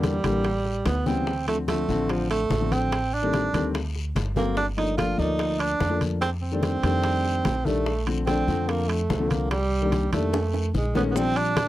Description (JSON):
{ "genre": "Afro-Cuban jazz", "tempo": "146 BPM", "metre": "4/4", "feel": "straight", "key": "Bb major", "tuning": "A4 = 440 Hz", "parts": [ { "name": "warm tenor saxophone", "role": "melody", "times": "0.0-11.7 s", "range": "F3 to F4", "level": "-26 LUFS", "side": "right 3 dB", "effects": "none" }, { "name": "warm baby grand piano", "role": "accompaniment", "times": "0.0-11.5 s", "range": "C#3 to D5", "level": "-27 LUFS", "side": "left 4 dB", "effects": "none" }, { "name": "upright bass", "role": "bass", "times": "0.0-11.7 s", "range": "G1 to F2", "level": "-28 LUFS", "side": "equal", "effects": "none" }, { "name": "bongos", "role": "percussion", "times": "0.0-11.7 s", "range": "none", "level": "-35 LUFS", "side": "left 5 dB", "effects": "none" }, { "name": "congas", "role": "percussion", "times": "0.0-11.7 s", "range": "none", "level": "-30 LUFS", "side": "left 1 dB", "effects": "none" }, { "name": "guiro", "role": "percussion", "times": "0.0-11.7 s", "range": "none", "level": "-43 LUFS", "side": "left 7 dB", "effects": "none" }, { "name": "timbales", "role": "percussion", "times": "0.0-11.7 s", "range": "none", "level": "-34 LUFS", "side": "right 6 dB", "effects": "none" }, { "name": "maracas", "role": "percussion", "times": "11.2-11.7 s", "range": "none", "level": "-41 LUFS", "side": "right 13 dB", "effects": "none" } ], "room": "light reverb", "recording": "dry, close 1970s-style studio recording", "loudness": "-22 LUFS", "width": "side -15 dB against mid", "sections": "0.0-11.2 A section", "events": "drum fill 4.4, 10.3-11.2", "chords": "0.5 A7; 1.3 Dm7; 2.9 Am7b5; 3.7 D7b13; 4.6 Gm9; 6.2 F13; 7.9 Bbmaj9; 9.5 Cm7; 10.3 F7alt; 11.2 Bb69" }